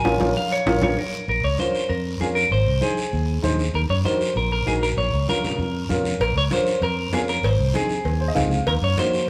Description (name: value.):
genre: latin, cumbia.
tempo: 195 BPM.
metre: 4/4.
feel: straight.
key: Bb minor.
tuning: A4 = 443 Hz.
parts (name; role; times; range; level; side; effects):
clean electric guitar; melody; 0.0-9.3 s; Ab4 to Ab5; -26 LUFS; equal; spring reverb.
clear upright piano; accompaniment; 0.0-9.2 s; Bb3 to F5; -28 LUFS; equal; none.
fingered electric bass; bass; 0.0-8.9 s; Ab1 to Gb2; -26 LUFS; equal; none.
guiro; percussion; 0.0-9.3 s; none; -38 LUFS; equal; none.
congas; percussion; 0.1-9.1 s; none; -33 LUFS; equal; none.
timbales and cowbell; percussion; 0.1-0.9, 6.2-9.1 s; none; -31 LUFS; equal; none.
room: moderate large studio reverb, RT60 1.1 s.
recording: band playing live in one room.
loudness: -22 LUFS.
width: mono.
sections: 0.0-1.3 A section; 1.3-9.3 B section.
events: clean electric guitar solo 0.0-1.3; band accent 0.0-1.3; drum fill 0.8-1.3; upright piano fill 8.1-8.7.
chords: 0.0 Bbm; 2.5 Ab; 3.7 Ebm; 5.0 Bbm; 7.4 Ab; 8.7 Ebm.